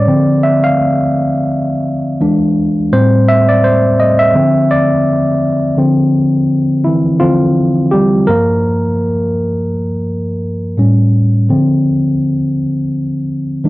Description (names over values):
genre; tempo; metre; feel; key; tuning
R&B; 84 BPM; 4/4; swing 56% on 16ths; D minor; A4 = 439 Hz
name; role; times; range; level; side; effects
tine electric piano; solo; 0.0-13.7 s; G2 to F5; -10 LUFS; equal; overdrive
room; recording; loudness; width
moderate small room reverb, RT60 0.5 s; home recording on cassette; -10 LUFS; side -18 dB against mid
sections
0.0-5.8 A section; 5.8-13.7 B section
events
tine electric piano solo 0.0-5.8, 5.8-13.7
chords
0.1 Dm7; 2.2 E7; 2.9 Am7; 4.3 Dm7; 5.8 Dm9; 8.3 Gm7; 10.8 A7; 11.5 Dm7